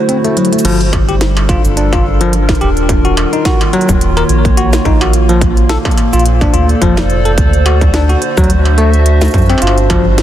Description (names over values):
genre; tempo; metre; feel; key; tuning
IDM; 107 BPM; 4/4; swing 56% on 16ths; unclear; A4 = 441 Hz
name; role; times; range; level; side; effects
warbly tape-like pad; sustained chords; 0.0-10.2 s; Bb2 to E5; -16 LUFS; equal; chorus, built-in reverb
bell-like tine electric piano; arpeggios; 0.1-10.0 s; F3 to Bb4; -16 LUFS; left 3 dB; medium stereo tremolo, ping-pong delay
industrial drum kit; drums; 0.1-10.2 s; cabasa, crash cymbal, hi-hat, snare drum, struck metal; -20 LUFS; right 1 dB; none
round analog bass; bass; 0.6-10.2 s; Eb1 to F#2; -12 LUFS; equal; none
electronic kick drum; drums; 0.9-10.0 s; none; -14 LUFS; equal; distortion
room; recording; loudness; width
light reverb, digital ambience; dense, heavily limited modern master; -8 LUFS; side -12 dB against mid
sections
0.6-10.2 A section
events
none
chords
0.0 D7; 0.6 Gm7; 2.9 Ebm7; 5.1 Bbmaj7; 7.4 D7; 9.6 G7(no3)